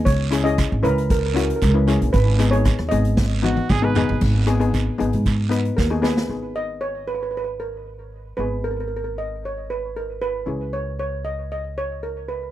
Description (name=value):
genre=calypso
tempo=115 BPM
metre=4/4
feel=straight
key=G# minor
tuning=A4 = 438 Hz
part: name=steel pan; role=accompaniment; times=0.0-12.5 s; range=B3 to B4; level=-24 LUFS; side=left 6 dB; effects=none
part: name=upright bass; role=bass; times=0.0-12.5 s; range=G#1 to G#2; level=-22 LUFS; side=right 1 dB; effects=none
part: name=steel pan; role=melody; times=0.1-12.5 s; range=A#4 to D#5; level=-26 LUFS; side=right 2 dB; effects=tape echo
part: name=street-band drum kit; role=drums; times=0.1-6.3 s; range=crash cymbal, hi-hat, kick drum, rim click, snare drum, toms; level=-23 LUFS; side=right 1 dB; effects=none
part: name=guiro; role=percussion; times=0.1-6.2 s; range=none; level=-33 LUFS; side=right 9 dB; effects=none
part: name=clear trumpet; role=second line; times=3.4-4.2 s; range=F#4 to B4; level=-29 LUFS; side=right 6 dB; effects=tape echo
room=little or no reverb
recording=dry, close 1970s-style studio recording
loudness=-19 LUFS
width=side -13 dB against mid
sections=0.0-4.2 A section; 4.2-6.3 B section; 6.3-12.5 C section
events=drum fill 3.2-4.2, 5.8-6.3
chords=0.1 C#m; 2.1 G#m; 10.5 C#m